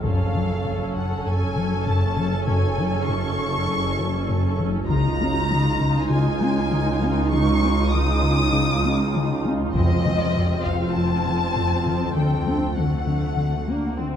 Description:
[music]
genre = cinematic, suspense film score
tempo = 99 BPM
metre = 4/4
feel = straight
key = unclear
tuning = A4 = 439 Hz
[part]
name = warm symphonic violin section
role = melody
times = 0.0-14.0 s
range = Eb5 to Eb6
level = -28 LUFS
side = left 3 dB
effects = none
[part]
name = warm symphonic viola section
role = accompaniment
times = 0.0-14.2 s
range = A3 to A4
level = -27 LUFS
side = right 1 dB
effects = none
[part]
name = smooth gliding synth bass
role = riff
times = 0.0-14.2 s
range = F2 to D4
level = -24 LUFS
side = left 2 dB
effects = none
[part]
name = dark symphonic cello section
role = bass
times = 0.0-14.2 s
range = Db2 to Gb2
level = -28 LUFS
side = right 2 dB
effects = none
[part]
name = rich symphonic double bass section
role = bass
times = 0.0-14.2 s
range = F1 to D2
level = -28 LUFS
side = right 3 dB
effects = none
[part]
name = taiko ensemble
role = drums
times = 0.0-1.2, 4.9-6.1, 9.7-10.9 s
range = none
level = -31 LUFS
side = right 1 dB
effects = none
[part]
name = swarming drone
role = drone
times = 0.1-14.2 s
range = Gb1 to F2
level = -30 LUFS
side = equal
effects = built-in reverb, phaser
[sound]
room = light reverb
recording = close, detailed microphones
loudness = -19 LUFS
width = side -9 dB against mid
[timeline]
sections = 0.0-14.2 A section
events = none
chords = 0.0 Gbmadd9; 4.9 Dbadd9; 9.7 F; 12.2 D7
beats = | 0.04 0.65 1.25 1.86 | 2.47 3.07 3.68 4.28 | 4.89 5.50 6.10 6.71 | 7.31 7.92 8.53 9.13 | 9.74 10.34 10.95 11.56 | 12.16 12.77 13.38 13.98

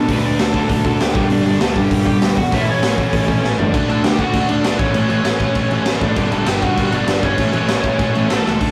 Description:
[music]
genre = punk rock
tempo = 197 BPM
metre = 4/4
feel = straight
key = D major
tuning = A4 = 439 Hz
[part]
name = high-gain lead guitar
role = melody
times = 0.0-8.7 s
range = C#4 to B5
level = -24 LUFS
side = equal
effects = distortion
[part]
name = distorted electric guitar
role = riff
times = 0.0-8.7 s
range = G2 to D4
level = -23 LUFS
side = equal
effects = distortion
[part]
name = high-gain distorted guitar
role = riff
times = 0.0-3.7, 6.2-8.6 s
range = G2 to E4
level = -31 LUFS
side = equal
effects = none
[part]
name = sludgy distorted guitar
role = riff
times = 0.0-8.7 s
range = G2 to D4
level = -27 LUFS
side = equal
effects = none
[part]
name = fuzz picked electric bass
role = bass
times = 0.0-8.7 s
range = G1 to E2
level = -25 LUFS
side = equal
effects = overdrive
[part]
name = raw garage drum kit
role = drums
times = 0.1-8.7 s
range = crash cymbal, hi-hat, kick drum, snare drum, toms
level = -21 LUFS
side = equal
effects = none
[sound]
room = light reverb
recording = rough rehearsal-room recording, warm saturation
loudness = -17 LUFS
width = mono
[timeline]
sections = 0.0-3.7 A section; 3.7-8.6 B section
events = drum fill 3.4-3.7, 8.5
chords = 0.0 D; 1.2 G; 2.5 A; 3.7 D; 4.8 A; 6.2 G; 7.4 A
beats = | 0.09 0.39 0.70 1.00 | 1.30 1.61 1.91 2.22 | 2.52 2.83 3.13 3.43 | 3.74 4.04 4.35 4.65 | 4.96 5.26 5.56 5.87 | 6.17 6.48 6.78 7.09 | 7.39 7.70 8.00 8.31 | 8.61

